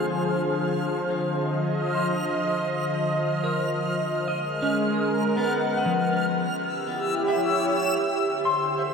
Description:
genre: ambient.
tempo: 60 BPM.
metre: 4/4.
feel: straight.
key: unclear.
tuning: A4 = 445 Hz.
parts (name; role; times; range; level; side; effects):
warm analog pad; sustained chords; 0.0-8.9 s; D3 to F#5; -25 LUFS; equal; chorus, shimmer reverb.
clean electric guitar; arpeggios; 0.0-8.9 s; F3 to C6; -29 LUFS; left 1 dB; ping-pong delay, shimmer reverb.
analog drone; drone; 0.0-8.3 s; D3; -32 LUFS; left 1 dB; chorus.
backwards swelling texture; texture; 0.0-8.9 s; C5 to F6; -32 LUFS; equal; built-in reverb, shimmer reverb.
room: wet huge ambient reverb, RT60 7.7 s.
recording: none.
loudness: -22 LUFS.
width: side -5 dB against mid.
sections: 0.0-8.3 A section.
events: fade-in on synth texture 0.0-8.3.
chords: 0.3 Cm11/D; 4.3 G#m7; 6.3 F#7b9b13/D; 8.3 N.C..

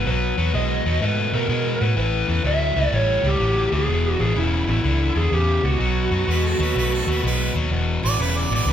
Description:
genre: blues.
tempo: 125 BPM.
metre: 4/4.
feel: swing 66% on 8ths.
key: E mixolydian.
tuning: A4 = 439 Hz.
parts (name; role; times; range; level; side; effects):
lead guitar through a small cranked amp; melody; 0.0-7.2 s; E4 to E5; -23 LUFS; right 1 dB; overdrive.
cranked stack guitar; riff; 0.0-8.7 s; E2 to A3; -24 LUFS; left 3 dB; overdrive.
vintage muted fingered electric bass; bass; 0.0-8.7 s; E1 to B2; -22 LUFS; equal; none.
bright harmonica; second line; 6.3-8.7 s; A4 to D5; -26 LUFS; right 5 dB; none.
room: moderate large studio reverb, RT60 1.0 s.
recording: band playing live in one room.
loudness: -18 LUFS.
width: side -9 dB against mid.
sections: 0.0-7.7 A section; 7.7-8.7 B section.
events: harmonica solo 7.7-8.7.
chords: 0.1 B7; 2.0 A9; 3.9 E5; 5.8 B7; 7.7 E7(no3).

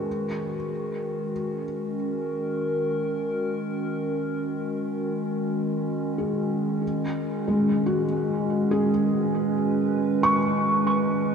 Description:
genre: ambient.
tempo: 71 BPM.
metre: 4/4.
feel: straight.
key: Eb minor.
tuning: A4 = 440 Hz.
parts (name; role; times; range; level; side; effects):
warbly tape-like pad; sustained chords; 0.0-11.3 s; Eb3 to Cb5; -25 LUFS; right 1 dB; chorus, built-in reverb.
felt-muted upright piano; arpeggios; 0.0-11.3 s; Ab3 to Db6; -27 LUFS; left 2 dB; tape echo.
room: wet cathedral reverb, RT60 5.4 s.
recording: in a vast, echoing space.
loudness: -23 LUFS.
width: side -6 dB against mid.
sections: 0.0-11.3 A section.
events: none.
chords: 0.1 Ebm; 6.8 Abm/Eb.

